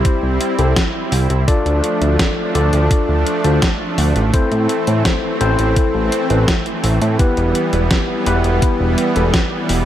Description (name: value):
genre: synthwave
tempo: 84 BPM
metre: 4/4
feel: straight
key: A minor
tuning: A4 = 440 Hz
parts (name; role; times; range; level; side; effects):
- soft supersaw; sustained chords; 0.0-9.9 s; E3 to E4; -20 LUFS; right 2 dB; sidechain pumping
- overdriven tine electric piano; stabs; 0.0-9.3 s; B3 to D5; -20 LUFS; left 3 dB; tape echo
- fat analog bass; bass; 0.0-9.9 s; E1 to A2; -16 LUFS; equal; tube saturation
- detuned 8-bit digital drum machine; drums; 0.1-9.8 s; hi-hat, snare drum; -21 LUFS; equal; overdrive, gated reverb
- electronic kick drum; drums; 0.1-9.5 s; none; -17 LUFS; equal; overdrive
room: light reverb, digital ambience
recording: none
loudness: -14 LUFS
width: side -11 dB against mid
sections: 0.0-9.9 A section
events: none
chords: 0.0 C; 1.5 Dm; 4.3 Am; 7.2 Em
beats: 0.05 0.77 | 1.48 2.19 2.91 3.62 | 4.34 5.05 5.76 6.48 | 7.19 7.91 8.62 9.34